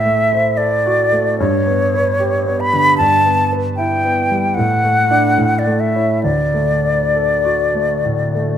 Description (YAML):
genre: classical, romantic duo for flute and grand piano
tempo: 65-76 BPM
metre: 4/4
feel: rubato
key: D major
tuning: A4 = 440 Hz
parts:
  - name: silver concert flute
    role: melody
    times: 0.0-8.6 s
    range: C#5 to B5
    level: -15 LUFS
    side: left 1 dB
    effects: none
  - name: clear concert grand piano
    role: accompaniment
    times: 0.0-8.6 s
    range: D2 to D5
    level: -17 LUFS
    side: right 1 dB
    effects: none
room: moderate recital hall reverb, RT60 1.5 s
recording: none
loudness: -13 LUFS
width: side -9 dB against mid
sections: 0.0-8.6 A section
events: none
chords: 0.0 D7/A; 1.4 G; 3.0 Em/G; 4.6 D/A; 5.4 A; 6.2 D